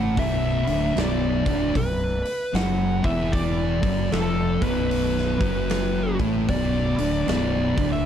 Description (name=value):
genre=stoner and doom metal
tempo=76 BPM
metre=4/4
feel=swing 63% on 8ths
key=B minor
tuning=A4 = 440 Hz
part: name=fuzz lead guitar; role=melody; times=0.0-8.1 s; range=A4 to F#5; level=-28 LUFS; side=equal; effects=wah, distortion, tape echo
part: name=thick fuzz guitar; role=riff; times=0.0-8.1 s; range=B1 to A3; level=-27 LUFS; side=left 11 dB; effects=distortion
part: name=thick fuzz guitar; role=riff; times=0.0-8.1 s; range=B1 to A3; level=-26 LUFS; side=right 9 dB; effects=distortion
part: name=fuzz fingered electric bass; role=bass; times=0.0-8.0 s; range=B0 to A1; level=-27 LUFS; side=equal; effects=overdrive
part: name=big rock drum kit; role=drums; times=0.2-7.9 s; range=hi-hat, kick drum, snare drum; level=-29 LUFS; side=equal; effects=none
room=light reverb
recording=dark, warm production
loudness=-20 LUFS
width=side -9 dB against mid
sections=0.0-8.1 A section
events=none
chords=0.0 Bm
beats=| 0.17 0.96 1.75 2.54 | 3.33 4.12 4.91 5.70 | 6.49 7.28